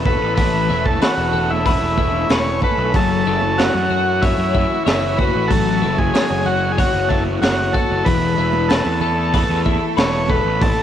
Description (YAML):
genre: psychedelic rock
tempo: 94 BPM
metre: 4/4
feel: straight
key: F# minor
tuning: A4 = 440 Hz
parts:
  - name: warm studio string section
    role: sustained chords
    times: 0.0-10.8 s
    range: E3 to A4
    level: -27 LUFS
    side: right 14 dB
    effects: none
  - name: twelve-string electric guitar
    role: riff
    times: 0.0-10.8 s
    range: E3 to C#5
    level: -22 LUFS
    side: left 12 dB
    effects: flanger
  - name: fuzz picked electric bass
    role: bass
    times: 0.0-10.8 s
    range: E1 to F#2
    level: -22 LUFS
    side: right 1 dB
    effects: overdrive
  - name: combo organ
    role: melody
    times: 0.1-10.8 s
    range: E4 to C#5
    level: -20 LUFS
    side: right 1 dB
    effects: tape echo
  - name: crunchy breakbeat drum kit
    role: drums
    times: 0.1-10.8 s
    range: hi-hat, kick drum, snare drum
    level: -20 LUFS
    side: right 1 dB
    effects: none
  - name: congas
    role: percussion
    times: 0.1-10.4 s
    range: none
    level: -32 LUFS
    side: right 13 dB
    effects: none
room: small room ambience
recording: 1960s-style stereo with parts hard left and right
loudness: -15 LUFS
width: side -10 dB against mid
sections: 0.0-10.8 A section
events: none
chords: 0.0 Esus4; 2.9 F#m7; 8.1 Esus4